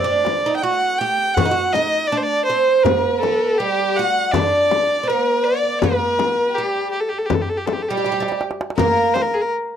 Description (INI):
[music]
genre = Arabic maqam ensemble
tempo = 81 BPM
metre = 4/4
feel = straight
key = G maqam suznak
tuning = A4 = 439 Hz
[part]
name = warm violin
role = melody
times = 0.0-9.5 s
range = G4 to G5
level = -19 LUFS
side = left 1 dB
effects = none
[part]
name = oud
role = second line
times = 0.0-9.1 s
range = G3 to G4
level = -22 LUFS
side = right 7 dB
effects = none
[part]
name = darbuka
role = percussion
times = 0.1-9.4 s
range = none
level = -26 LUFS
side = right 1 dB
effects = none
[part]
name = frame drum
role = percussion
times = 0.3-9.3 s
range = none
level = -24 LUFS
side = left 10 dB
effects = none
[part]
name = rich studio violin section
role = second line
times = 2.9-9.1 s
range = G4 to F#5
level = -24 LUFS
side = left 3 dB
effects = none
[sound]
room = small room ambience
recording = dry, close 1970s-style studio recording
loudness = -16 LUFS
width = side -8 dB against mid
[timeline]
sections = 0.0-8.8 A section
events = drum fill 8.0-8.8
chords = none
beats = 0.64 1.38 2.12 | 2.86 3.60 4.34 5.08 | 5.82 6.56 7.30 8.04 | 8.78